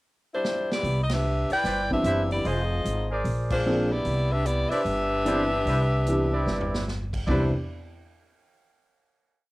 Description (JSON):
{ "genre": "jazz, big band swing", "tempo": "149 BPM", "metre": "4/4", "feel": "swing 64% on 8ths", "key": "C major", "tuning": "A4 = 441 Hz", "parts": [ { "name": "clear saxophone section", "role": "melody", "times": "0.3-7.5 s", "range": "G3 to G5", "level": "-26 LUFS", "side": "left 1 dB", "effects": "cassette tape, plate reverb" }, { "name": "swinging big-band drum kit", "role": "drums", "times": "0.4-7.4 s", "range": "crash cymbal, hi-hat, kick drum, ride cymbal, snare drum, toms", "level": "-34 LUFS", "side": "equal", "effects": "cassette tape" }, { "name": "upright bass", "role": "bass", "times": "0.8-7.5 s", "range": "F1 to C2", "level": "-27 LUFS", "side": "equal", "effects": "none" }, { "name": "mellow trumpet section", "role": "stabs", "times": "1.6-7.4 s", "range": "C4 to E5", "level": "-32 LUFS", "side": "right 1 dB", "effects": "cassette tape, plate reverb" }, { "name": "warm baby grand piano", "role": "accompaniment", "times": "1.9-7.5 s", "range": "E3 to Ab4", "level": "-28 LUFS", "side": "equal", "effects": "cassette tape, plate reverb" } ], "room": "light reverb", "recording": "home recording on cassette", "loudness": "-23 LUFS", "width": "side -20 dB against mid", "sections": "0.0-0.8 pickup bar; 0.8-7.3 A section; 7.3-8.9 final chord", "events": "drum fill 0.4-0.8, 6.5-6.9; band accent 1.0, 3.5", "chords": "0.0 Cadd9; 0.8 Cmaj9; 2.5 Fm7; 3.3 Bb9; 4.1 Cmaj9", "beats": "0.05 0.45 | 0.85 1.25 1.65 2.05 | 2.45 2.85 3.25 3.66 | 4.06 4.46 4.86 5.26 | 5.67 6.07 6.47 6.87 | 7.28" }